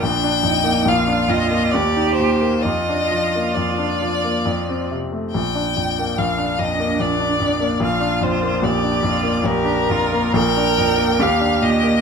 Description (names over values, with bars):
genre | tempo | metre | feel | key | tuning
classical, slow romantic movement for piano trio | 64-75 BPM | 3/4 | rubato | Bb major | A4 = 440 Hz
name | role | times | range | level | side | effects
clear violin | melody | 0.0-12.0 s | Bb4 to G5 | -21 LUFS | left 4 dB | none
clear cello | second line | 0.0-12.0 s | D4 to Bb4 | -23 LUFS | right 8 dB | none
bright concert grand piano | accompaniment | 0.0-12.0 s | Bb1 to Eb4 | -20 LUFS | equal | none
room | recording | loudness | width
moderate large studio reverb, RT60 1.4 s | minimal, uncompressed stereo recording | -16 LUFS | side -6 dB against mid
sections
0.0-12.0 A section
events
none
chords
0.0 Bb; 1.7 Eb6; 2.6 Bb/F; 4.5 F; 5.3 Bb; 11.2 Ebmaj7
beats
| 0.02 0.87 1.73 | 2.63 3.55 4.46 | 5.34 6.19 7.02 | 7.83 8.66 9.47 | 10.37 11.22